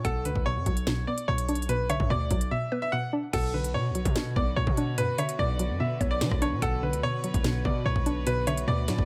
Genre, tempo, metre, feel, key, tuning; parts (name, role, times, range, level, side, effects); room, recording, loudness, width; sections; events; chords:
hip hop, drill; 146 BPM; 4/4; half-time; B minor; A4 = 440 Hz
bright upright piano; melody; 0.0-9.1 s; A4 to F#5; -34 LUFS; equal
mallet-like synth pluck; second line; 0.0-9.1 s; B4 to F#5; -40 LUFS; equal; chorus, tape echo
hollow square pluck; accompaniment; 0.0-9.1 s; B2 to D4; -33 LUFS; equal; chorus
distorted 808-style bass; bass; 0.0-9.1 s; B1 to F#3; -33 LUFS; equal; distortion
drill drum kit; drums; 0.0-9.1 s; crash cymbal, hi-hat, kick drum, rim click, snare drum; -32 LUFS; equal
warm chamber string section; sustained chords; 3.3-9.1 s; D3 to B4; -41 LUFS; equal
digital ambience; -28 LUFS; mono
0.0-3.3 A section; 3.3-9.1 B section
break 2.5-3.3
0.0 Bm